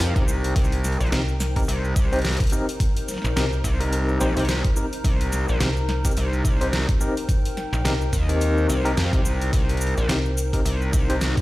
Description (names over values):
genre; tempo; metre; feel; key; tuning
glitch hop; 107 BPM; 4/4; swing 57% on 16ths; C minor pentatonic; A4 = 440 Hz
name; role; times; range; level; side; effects
gritty driven synth bass; bass; 0.0-11.3 s; Bb1 to F2; -22 LUFS; equal; none
dubstep drum kit; drums; 0.0-11.4 s; hi-hat, shaker, snare drum; -29 LUFS; equal; overdrive
warbly tape-like pad; texture; 0.0-11.4 s; Eb4 to Bb5; -31 LUFS; left 2 dB; chorus, built-in reverb, sidechain pumping
overdriven tine electric piano; stabs; 0.2-11.2 s; C4 to C5; -28 LUFS; left 1 dB; fast tremolo, sidechain pumping, tape echo
electronic kick drum; drums; 0.2-11.4 s; none; -21 LUFS; equal; overdrive
slap-like FM bass; bass; 1.1-10.6 s; Bb1 to C2; -23 LUFS; equal; tube saturation
room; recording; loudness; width
digital ambience; played on a big sound system in a bare room, stone room reverb; -20 LUFS; side -18 dB against mid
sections
0.0-11.4 A section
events
none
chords
0.0 Cm7